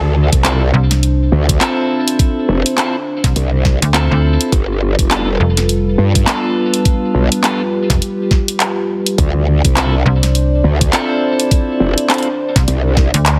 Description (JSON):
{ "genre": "glitch hop", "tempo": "103 BPM", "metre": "4/4", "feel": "swing 59% on 16ths", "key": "D dorian", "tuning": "A4 = 439 Hz", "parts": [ { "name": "dark analog pad", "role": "sustained chords", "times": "0.7-13.4 s", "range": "G3 to D5", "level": "-23 LUFS", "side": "equal", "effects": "chorus, sidechain pumping" }, { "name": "growl bass", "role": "bass", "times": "0.0-13.1 s", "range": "F1 to G2", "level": "-16 LUFS", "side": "equal", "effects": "chorus, tube saturation" }, { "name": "dubstep drum kit", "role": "drums", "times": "0.3-13.4 s", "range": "handclaps, hi-hat, snare drum", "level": "-21 LUFS", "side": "equal", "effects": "small room ambience" }, { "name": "electronic kick drum", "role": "drums", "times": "0.3-13.1 s", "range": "none", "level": "-17 LUFS", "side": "equal", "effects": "small room ambience" }, { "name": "twelve-string electric guitar", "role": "stabs", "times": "0.4-12.3 s", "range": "B3 to A4", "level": "-22 LUFS", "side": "equal", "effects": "vintage 12-bit sampler grit, sidechain pumping, delay" }, { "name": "slap-like FM bass", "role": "bass", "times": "0.7-13.4 s", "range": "F1 to D2", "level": "-16 LUFS", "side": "equal", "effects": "none" } ], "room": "light reverb, digital ambience", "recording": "heavily compressed radio sound", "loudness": "-14 LUFS", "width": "mono", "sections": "0.0-13.4 A section", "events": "none", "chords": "0.0 Dm7; 4.5 G9; 9.2 Dm7" }